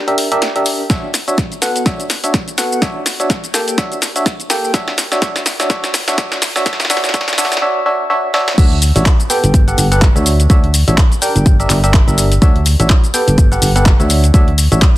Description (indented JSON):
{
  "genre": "piano house",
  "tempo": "125 BPM",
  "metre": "4/4",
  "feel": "swing 58% on 16ths",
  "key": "D major",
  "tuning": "A4 = 439 Hz",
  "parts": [
    { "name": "barking FM electric piano", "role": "riff", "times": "0.0-14.9 s", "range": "Bb3 to G5", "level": "-17 LUFS", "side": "equal", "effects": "chorus, tremolo, cassette tape, sidechain pumping, low-pass filter, tape echo" },
    { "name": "punchy analog drum machine", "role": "drums", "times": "0.1-15.0 s", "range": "crash cymbal, handclaps, hi-hat, shaker, snare drum", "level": "-18 LUFS", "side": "left 1 dB", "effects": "high-pass filter on hats, high-pass filter on snare, high-pass filter on perc, high-pass filter on cymbals" },
    { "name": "electronic kick drum", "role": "drums", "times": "0.9-14.9 s", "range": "none", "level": "-12 LUFS", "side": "equal", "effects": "none" },
    { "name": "solid FM bass", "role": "bass", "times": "8.6-14.8 s", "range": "G1 to D2", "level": "-13 LUFS", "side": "equal", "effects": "sidechain pumping" }
  ],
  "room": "light reverb",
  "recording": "dense, heavily limited modern master, high-pass filter",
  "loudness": "-11 LUFS",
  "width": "side -16 dB against mid",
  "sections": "0.0-8.6 A section; 8.6-15.0 B section",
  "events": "build-up 0.0-8.6; drum fill 0.0-7.6, 8.3; filter sweep on FM electric piano 0.0-8.6; drop 8.6-15.0",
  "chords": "0.0 Gm6; 0.9 Dmaj9; 3.5 Gm6; 4.7 Dmaj9; 8.6 Gmaj9; 10.3 Dmaj9; 11.2 Gm6; 12.4 Gmaj9; 14.1 Dmaj9",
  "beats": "0.42 | 0.90 1.38 1.86 2.34 | 2.82 3.30 3.78 4.26 | 4.74 5.22 5.70 6.18 | 6.66 7.14 7.62 8.10 | 8.58 9.06 9.54 10.02 | 10.50 10.98 11.46 11.94 | 12.42 12.90 13.38 13.86 | 14.34 14.82"
}